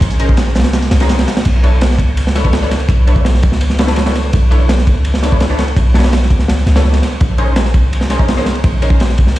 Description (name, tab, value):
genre	drum and bass, jungle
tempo	167 BPM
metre	4/4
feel	straight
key	unclear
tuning	A4 = 441 Hz
part	warm 808-style bass	bass	0.0-9.4 s	A#1 to C#2	-13 LUFS	equal	none
part	crunchy breakbeat drum kit	drums	0.0-9.4 s	crash cymbal, kick drum, ride cymbal, snare drum	-14 LUFS	equal	none
part	dusty soul sampler-style drum kit	drums	0.0-1.4 s	hi-hat, shaker, snare drum	-31 LUFS	right 1 dB	high-pass filter on snare, high-pass filter on perc, high-pass filter on hats, high-pass filter on room
part	backwards swelling texture	texture	0.1-1.5 s	C#6	-41 LUFS	right 1 dB	none
part	orchestra-hit-like synth stab	stabs	0.2-9.0 s	C#4 to C#5	-21 LUFS	left 1 dB	built-in reverb, phaser, dub echo
room	studio reverb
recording	played on a big sound system in a bare room, stone room reverb, vinyl crackle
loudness	-10 LUFS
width	side -16 dB against mid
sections	0.0-1.5 A section; 1.5-9.4 A section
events	drop 0.0-1.5, 1.5-9.4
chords	0.0 A#m11; 1.5 Bm11; 7.2 A#m11